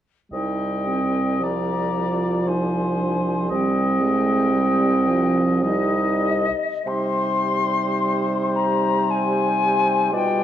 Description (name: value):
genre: classical, slow romantic movement for wind quintet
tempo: 55 BPM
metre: 3/4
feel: uneven beats, rubato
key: C minor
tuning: A4 = 444 Hz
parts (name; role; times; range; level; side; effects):
- concert flute; melody; 0.3-10.4 s; Eb5 to C6; -24 LUFS; left 6 dB; none
- warm oboe; second line; 0.3-10.4 s; C5 to Eb5; -27 LUFS; left 2 dB; none
- dark clarinet; accompaniment; 0.3-10.4 s; C4 to F4; -25 LUFS; right 4 dB; none
- warm French horn; accompaniment; 0.3-10.4 s; F3 to Ab3; -26 LUFS; equal; none
- mellow bassoon; bass; 0.3-10.4 s; C2 to C3; -25 LUFS; right 3 dB; none
room: wet recital hall reverb, RT60 1.6 s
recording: dark, warm production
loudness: -19 LUFS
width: side -10 dB against mid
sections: 0.3-6.9 A section; 6.9-10.4 B section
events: none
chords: 0.3 Cm